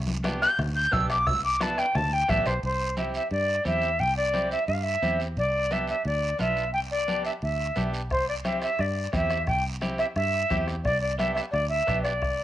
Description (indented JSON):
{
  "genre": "latin, cumbia",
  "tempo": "175 BPM",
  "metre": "4/4",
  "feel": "straight",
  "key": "C major",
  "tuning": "A4 = 440 Hz",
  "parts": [
    { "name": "fingered electric bass", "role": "bass", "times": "0.0-12.4 s", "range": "A1 to G2", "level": "-30 LUFS", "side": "equal", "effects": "none" },
    { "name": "congas", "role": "percussion", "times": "0.1-12.4 s", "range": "none", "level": "-35 LUFS", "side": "left 1 dB", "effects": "none" },
    { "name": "electric guitar at the edge of break-up", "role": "accompaniment", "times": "0.2-12.1 s", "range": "B3 to G4", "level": "-35 LUFS", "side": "right 1 dB", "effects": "spring reverb" },
    { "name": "bombo", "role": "percussion", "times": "0.2-2.6, 8.1-12.4 s", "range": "none", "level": "-34 LUFS", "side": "left 1 dB", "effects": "none" },
    { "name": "guiro", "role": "percussion", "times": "0.2-12.4 s", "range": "none", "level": "-41 LUFS", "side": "right 4 dB", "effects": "none" },
    { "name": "jazz flute", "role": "melody", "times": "0.4-12.4 s", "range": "C5 to G6", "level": "-25 LUFS", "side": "equal", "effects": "cassette tape" }
  ],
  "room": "moderate studio reverb, RT60 0.6 s",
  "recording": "home recording on cassette",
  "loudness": "-24 LUFS",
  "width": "side -13 dB against mid",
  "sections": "0.0-2.6 A section; 2.6-12.4 B section",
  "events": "flute solo 0.0-2.6",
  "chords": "0.0 G; 2.6 C; 5.4 G; 8.1 C; 10.8 G"
}